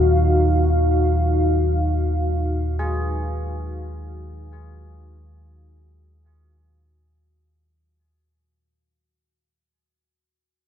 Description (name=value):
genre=dark ambient drone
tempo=free time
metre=none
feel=none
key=unclear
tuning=A4 = 440 Hz
part: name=deep dark ambient pad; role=sustained chords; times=0.0-8.0 s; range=Eb4 to F5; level=-23 LUFS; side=left 1 dB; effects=chorus, built-in reverb
part: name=deep rumbling drone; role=drone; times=0.0-8.1 s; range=Eb2 to Bb2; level=-21 LUFS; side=equal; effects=built-in reverb
part: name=bronze singing bowl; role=texture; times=0.0-8.0 s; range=Gb4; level=-36 LUFS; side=left 5 dB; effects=none
part: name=carillon bells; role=arpeggios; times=2.8-9.7 s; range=Ab4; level=-35 LUFS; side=right 1 dB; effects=none
room=wet cathedral reverb, RT60 5.9 s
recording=in a vast, echoing space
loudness=-18 LUFS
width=side -9 dB against mid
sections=0.0-8.0 A section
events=fade-out on church bells 0.0-8.0; fade-out 0.0-8.0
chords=0.0 Ebmadd9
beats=free time